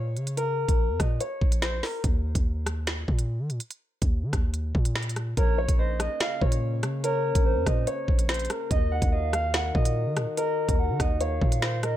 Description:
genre	hip hop, drill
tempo	144 BPM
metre	4/4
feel	half-time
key	Bb minor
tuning	A4 = 435 Hz
part	dark concert grand piano	melody	0.0-2.0, 5.4-12.0 s	Bb4 to Gb5	-30 LUFS	left 2 dB	ping-pong delay
part	hard-hitting 808-style bass	bass	0.0-12.0 s	Bb1 to Eb3	-28 LUFS	equal	none
part	drill drum kit	drums	0.2-11.9 s	finger snaps, hi-hat, kick drum, rim click, snare drum	-26 LUFS	equal	none
part	hollow clarinet-like synth lead	second line	5.4-12.0 s	C5 to Gb5	-33 LUFS	right 5 dB	chorus, ping-pong delay
part	dark brass ensemble	sustained chords	5.4-12.0 s	Db3 to Bb4	-37 LUFS	left 2 dB	none
room	little or no reverb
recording	none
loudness	-24 LUFS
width	side -12 dB against mid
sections	0.0-5.4 A section; 5.4-12.0 B section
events	none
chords	0.0 Bbm; 2.0 Eb5; 5.4 Bbmadd9; 8.7 Ebm

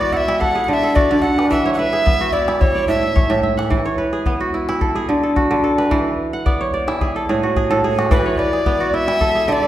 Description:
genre	west african traditional, West African string and xylophone music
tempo	109 BPM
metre	4/4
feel	straight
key	unclear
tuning	A4 = 437 Hz
part	breathy alto recorder	melody	0.0-3.4, 8.1-9.7 s	B4 to F#5	-18 LUFS	equal	none
part	kora	arpeggios	0.0-9.7 s	A2 to F#5	-17 LUFS	right 1 dB	none
part	calabash	percussion	0.3-9.3 s	none	-22 LUFS	left 1 dB	none
room	wet recital hall reverb, RT60 1.4 s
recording	recorded in a church or concert hall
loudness	-15 LUFS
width	side -13 dB against mid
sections	0.0-9.7 A section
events	kora fill 6.3-8.1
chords	0.4 D; 1.5 E; 2.6 A; 3.7 E; 4.8 D; 5.9 E5; 7.0 N.C.; 8.1 E

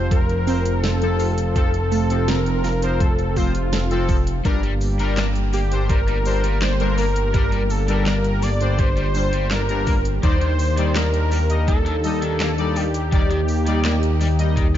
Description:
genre	synthwave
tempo	83 BPM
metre	4/4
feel	straight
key	G minor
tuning	A4 = 441 Hz
part	wide unison lead	melody	0.0-14.8 s	F4 to D5	-26 LUFS	equal	ping-pong delay
part	warm analog pad	sustained chords	0.0-14.8 s	C3 to G4	-28 LUFS	right 1 dB	chorus, sidechain pumping
part	analog synth brass	stabs	0.0-14.6 s	G2 to Eb5	-27 LUFS	left 4 dB	chorus
part	chorused synth bass	bass	0.0-14.8 s	F1 to Eb2	-21 LUFS	equal	none
part	wide unison pluck	arpeggios	0.1-4.4 s	F3 to A4	-29 LUFS	right 3 dB	ping-pong delay
part	electronic kick drum	drums	0.1-14.7 s	none	-20 LUFS	equal	none
part	pop drum kit	drums	0.1-14.8 s	cabasa, handclaps, hi-hat, snare drum	-30 LUFS	equal	none
part	overdriven semi-hollow guitar	riff	4.5-14.8 s	Eb3 to D4	-32 LUFS	left 4 dB	wide subtle chorus, ping-pong delay
room	digital ambience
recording	dark, warm production, nothing above 7.5 kHz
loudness	-17 LUFS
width	side -11 dB against mid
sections	0.0-14.8 A section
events	none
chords	0.0 F; 4.5 Gm; 10.2 Ebmaj7

